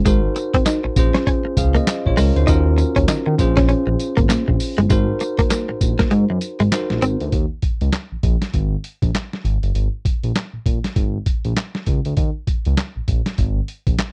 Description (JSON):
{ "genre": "R&B, new jack swing", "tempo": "99 BPM", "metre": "4/4", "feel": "swing 60% on 16ths", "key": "Bb minor", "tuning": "A4 = 435 Hz", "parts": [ { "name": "bell-like tine electric piano", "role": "accompaniment", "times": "0.0-7.3 s", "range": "Db4 to F5", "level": "-25 LUFS", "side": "equal", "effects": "none" }, { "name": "direct-recorded clean electric guitar", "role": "riff", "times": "0.0-7.2 s", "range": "Ab3 to Eb4", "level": "-22 LUFS", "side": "equal", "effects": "lush chorus" }, { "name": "smooth synth bass", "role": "bass", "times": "0.1-14.0 s", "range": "G1 to Eb3", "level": "-22 LUFS", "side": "equal", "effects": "none" }, { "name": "boom bap sampler-style drum kit", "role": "drums", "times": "0.1-14.1 s", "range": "handclaps, hi-hat, kick drum, snare drum, tambourine", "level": "-22 LUFS", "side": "equal", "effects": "none" } ], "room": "little or no reverb", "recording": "dry, close 1970s-style studio recording", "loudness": "-19 LUFS", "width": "mono", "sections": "0.0-7.3 A section; 7.3-14.1 B section", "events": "kick muted 6.1-7.3", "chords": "0.1 Ab9; 1.0 Bbm9; 2.5 Ebm9; 3.4 Bbm9; 4.9 Ab9; 7.3 Eb5; 8.2 N.C.; 9.7 Absus2; 10.7 Bbm7; 12.2 Eb5; 13.1 N.C." }